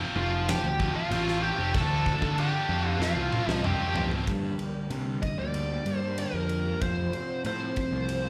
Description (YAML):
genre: quiet-loud alternative rock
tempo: 95 BPM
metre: 4/4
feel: straight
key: G minor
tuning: A4 = 440 Hz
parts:
  - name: heavy high-gain guitar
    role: riff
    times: 0.0-4.3 s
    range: D3 to F4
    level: -34 LUFS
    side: equal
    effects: distortion, slapback echo
  - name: bluesy overdriven lead guitar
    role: melody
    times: 0.2-8.3 s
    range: F4 to A5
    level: -34 LUFS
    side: equal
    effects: distortion
  - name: fuzz picked electric bass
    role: bass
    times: 0.2-8.3 s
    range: F1 to D3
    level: -33 LUFS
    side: equal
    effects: overdrive
  - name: huge arena drum kit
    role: drums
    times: 0.5-8.2 s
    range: crash cymbal, kick drum, ride cymbal, snare drum, toms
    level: -36 LUFS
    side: equal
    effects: none
  - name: electric guitar at the edge of break-up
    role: arpeggios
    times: 4.3-8.3 s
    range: F2 to G4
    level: -36 LUFS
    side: equal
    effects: phaser, slapback echo
room: small room reverb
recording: live gig heard through the venue's PA, club reverb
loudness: -28 LUFS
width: mono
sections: 0.0-4.3 A section; 4.3-8.3 B section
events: drum fill 3.0-4.3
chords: 0.0 Fadd9; 1.7 Dm; 3.0 Fadd9; 4.3 Gm; 6.8 F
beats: 0.48 1.11 | 1.74 2.37 3.01 3.64 | 4.27 4.91 5.54 6.18 | 6.81 7.45 8.09